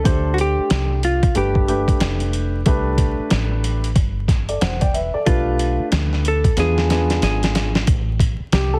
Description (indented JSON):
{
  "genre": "hip hop, jazz-hop",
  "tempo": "92 BPM",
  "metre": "4/4",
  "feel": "swing 61% on 16ths",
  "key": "unclear",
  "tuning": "A4 = 440 Hz",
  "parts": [
    { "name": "hollow-body jazz guitar", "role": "melody", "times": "0.0-7.7 s", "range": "F4 to A4", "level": "-25 LUFS", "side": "equal", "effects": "none" },
    { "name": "warm grand piano", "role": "accompaniment", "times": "0.0-8.8 s", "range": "A3 to G5", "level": "-26 LUFS", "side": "equal", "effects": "none" },
    { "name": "deep dub fingered electric bass", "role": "bass", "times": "0.1-8.8 s", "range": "E1 to E2", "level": "-24 LUFS", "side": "equal", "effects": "none" },
    { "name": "dusty soul sampler-style drum kit", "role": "drums", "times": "0.1-8.7 s", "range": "hi-hat, kick drum, snare drum", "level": "-22 LUFS", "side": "equal", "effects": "none" }
  ],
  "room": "little or no reverb",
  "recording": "heavily compressed radio sound, multiband compression, vinyl crackle",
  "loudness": "-19 LUFS",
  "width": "mono",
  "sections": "0.0-7.9 A section",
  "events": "drum fill 6.6-7.9",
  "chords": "0.1 D5; 1.4 G9; 2.7 Cmaj9; 5.3 Bm7b5; 6.6 E7b9; 7.9 Am7"
}